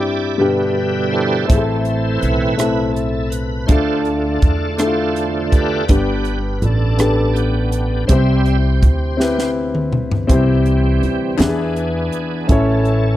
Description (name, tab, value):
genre	slow gospel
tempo	55 BPM (dotted quarters)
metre	6/8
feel	straight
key	C major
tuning	A4 = 440 Hz
part	warm grand piano	accompaniment	0.0-13.2 s	G2 to C#5	-19 LUFS	left 3 dB	none
part	bright tonewheel organ	sustained chords	0.0-13.2 s	B2 to E5	-22 LUFS	right 3 dB	slow rotary speaker, overdrive, chorus vibrato
part	upright bass	bass	1.5-13.2 s	G1 to E2	-19 LUFS	right 1 dB	none
part	crisp fusion drum kit	drums	1.5-13.0 s	hi-hat, kick drum, rim click, snare drum, toms	-16 LUFS	right 1 dB	none
part	group handclap	percussion	11.4-11.7 s	none	-30 LUFS	left 16 dB	none
room	studio reverb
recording	dry, close 1970s-style studio recording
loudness	-14 LUFS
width	side -14 dB against mid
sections	0.0-10.3 A section; 10.3-13.2 A section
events	tonewheel organ solo 0.0-10.3; drum fill 9.2-10.3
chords	0.4 G; 1.5 Am; 3.7 Dm; 5.9 G; 8.1 C; 11.4 E7; 12.5 A